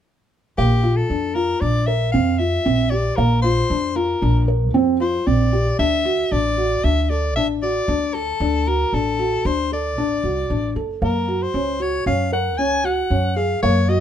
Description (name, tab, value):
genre	contemporary instrumental, chamber music in an uneven meter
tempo	115 BPM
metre	5/4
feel	straight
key	Bb lydian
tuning	A4 = 440 Hz
part	bright soprano saxophone	melody	0.6-14.0 s	G4 to Ab5	-23 LUFS	left 2 dB	none
part	felt-muted upright piano	arpeggios	0.6-14.0 s	Bb3 to Bb4	-21 LUFS	equal	none
part	upright bass	bass	0.6-14.0 s	F#1 to Gb2	-22 LUFS	equal	none
room	light reverb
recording	minimal, uncompressed stereo recording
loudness	-17 LUFS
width	side -9 dB against mid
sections	0.6-14.0 A section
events	none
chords	0.6 Bbadd9; 5.8 D; 11.0 Gb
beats	| 0.58 1.10 1.62 2.14 2.66 | 3.18 3.70 4.22 4.75 5.27 | 5.79 6.31 6.84 7.36 7.88 | 8.40 8.93 9.45 9.97 10.50 | 11.02 11.54 12.06 12.59 13.11 | 13.63